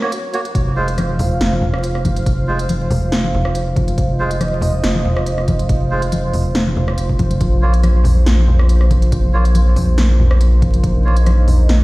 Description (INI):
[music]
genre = deep dubstep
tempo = 140 BPM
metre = 4/4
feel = swing 54% on 16ths, half-time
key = unclear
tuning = A4 = 440 Hz
[part]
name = dark analog pad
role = sustained chords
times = 0.0-11.8 s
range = Bb3 to F5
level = -24 LUFS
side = right 1 dB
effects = chorus
[part]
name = melodica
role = stabs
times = 0.0-11.2 s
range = Ab3 to Db5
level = -25 LUFS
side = right 3 dB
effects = dub echo
[part]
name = deep house drum kit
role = drums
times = 0.0-11.8 s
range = hi-hat, rim click, snare drum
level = -24 LUFS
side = equal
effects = none
[part]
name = saturated sub bass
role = bass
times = 0.6-11.8 s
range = F1 to Bb1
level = -15 LUFS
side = equal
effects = none
[part]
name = electronic kick drum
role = drums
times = 0.6-10.9 s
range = none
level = -18 LUFS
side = equal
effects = none
[part]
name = congas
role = percussion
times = 1.0-11.8 s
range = none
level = -21 LUFS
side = left 1 dB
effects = none
[sound]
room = light reverb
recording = played on a big sound system in a bare room, large studio reverb, vinyl crackle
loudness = -13 LUFS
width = side -20 dB against mid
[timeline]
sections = 0.0-11.8 A section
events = break 0.0-0.6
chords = 0.0 Gb; 0.6 F5; 7.4 Bb5